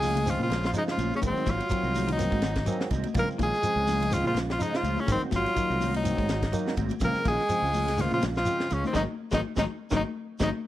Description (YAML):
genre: afrobeat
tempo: 124 BPM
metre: 4/4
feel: swing 56% on 16ths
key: Bb minor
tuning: A4 = 440 Hz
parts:
  - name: edgy tenor saxophone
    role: melody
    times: 0.0-10.5 s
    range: C4 to Bb4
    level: -29 LUFS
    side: left 1 dB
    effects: none
  - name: breathy alto saxophone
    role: second line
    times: 0.0-10.5 s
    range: Db3 to Bb3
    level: -35 LUFS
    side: right 2 dB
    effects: slapback echo
  - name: mellow electric guitar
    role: stabs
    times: 0.0-10.5 s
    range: Eb3 to Gb4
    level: -36 LUFS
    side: right 5 dB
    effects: ensemble chorus
  - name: fingered electric bass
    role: bass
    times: 0.0-10.5 s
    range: Ab1 to Bb2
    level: -31 LUFS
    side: equal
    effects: none
  - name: tight funk drum kit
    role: drums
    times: 0.0-10.5 s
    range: hi-hat, kick drum, ride cymbal, snare drum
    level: -33 LUFS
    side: equal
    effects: none
  - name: congas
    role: percussion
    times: 0.0-10.5 s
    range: none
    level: -35 LUFS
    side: left 7 dB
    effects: none
  - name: shekere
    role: percussion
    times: 0.0-10.5 s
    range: none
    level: -37 LUFS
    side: right 1 dB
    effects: none
  - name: clean electric guitar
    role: arpeggios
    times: 0.1-10.5 s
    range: Db3 to Ab3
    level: -36 LUFS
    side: left 5 dB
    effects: none
  - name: barky tine electric piano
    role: accompaniment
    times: 0.3-10.5 s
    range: Db3 to Ab5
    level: -36 LUFS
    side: right 4 dB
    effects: none
room: small room reverb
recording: dry, close 1970s-style studio recording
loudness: -24 LUFS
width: side -14 dB against mid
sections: 0.0-10.7 A section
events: tine electric piano fill 2.4-3.2, 9.9-10.7; band accent 8.9-10.7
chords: 0.0 Bbm7; 1.2 Ab7; 3.2 Bbm7; 5.1 Ab7; 7.0 Bbm7; 8.9 Ab7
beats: 0.27 0.75 | 1.23 1.71 2.19 2.67 | 3.16 3.64 4.12 4.60 | 5.08 5.57 6.05 6.53 | 7.01 7.50 7.98 8.46 | 8.95 9.43 9.92 10.40